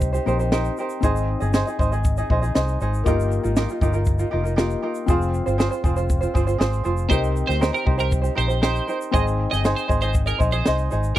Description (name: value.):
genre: acoustic pop.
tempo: 118 BPM.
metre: 4/4.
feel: straight.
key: unclear.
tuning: A4 = 441 Hz.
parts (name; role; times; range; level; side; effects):
felt-muted upright piano; accompaniment; 0.0-11.2 s; Bb3 to F5; -30 LUFS; left 8 dB; none.
tenor ukulele; accompaniment; 0.0-11.2 s; C4 to Eb5; -25 LUFS; right 3 dB; none.
vintage muted fingered electric bass; bass; 0.0-11.2 s; F1 to D2; -23 LUFS; equal; none.
compact cocktail drum kit; drums; 0.0-11.2 s; kick drum, shaker, snare drum; -23 LUFS; equal; none.
twelve-string electric guitar; arpeggios; 7.1-11.2 s; Bb4 to Eb5; -27 LUFS; right 4 dB; analog chorus.
room: studio reverb.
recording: dry, close 1970s-style studio recording.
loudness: -19 LUFS.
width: side -13 dB against mid.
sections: 0.0-11.2 A section.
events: felt piano fill 2.3-3.1.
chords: 0.0 Cm7; 1.0 Ab; 3.1 Ebadd9/G; 5.1 Fm; 7.1 Cm7; 9.1 Ab.